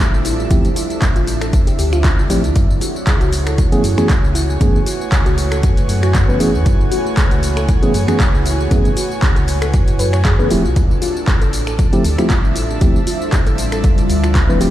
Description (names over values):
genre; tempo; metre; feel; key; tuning
deep house; 117 BPM; 4/4; swing 55% on 16ths; F# minor; A4 = 441 Hz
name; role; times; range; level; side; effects
deep dark ambient pad; sustained chords; 0.0-14.7 s; G3 to G#5; -25 LUFS; right 1 dB; chorus, built-in reverb, vintage 12-bit sampler grit, sidechain pumping
sub bass with octave; bass; 0.0-14.7 s; D1 to F#2; -18 LUFS; equal; sidechain pumping
deep house drum kit; drums; 0.0-14.7 s; finger snaps, handclaps, hi-hat, tambourine; -24 LUFS; equal; overdrive
airy breathy pad; texture; 0.0-14.7 s; D4 to G#5; -26 LUFS; right 1 dB; chorus, sidechain pumping
warbly dusty pluck; arpeggios; 0.2-14.7 s; E4 to D5; -26 LUFS; left 2 dB; chorus, sidechain pumping, dub echo
mellow tine electric piano; stabs; 0.5-14.7 s; E3 to B4; -20 LUFS; equal; sidechain pumping, tape echo
electronic kick drum; drums; 0.5-14.5 s; none; -16 LUFS; equal; overdrive
room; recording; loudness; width
little or no reverb; played on a big sound system in a bare room, large studio reverb; -13 LUFS; side -13 dB against mid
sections
0.0-14.7 A section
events
none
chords
0.0 Dm11; 2.6 F#m11; 10.5 Dm11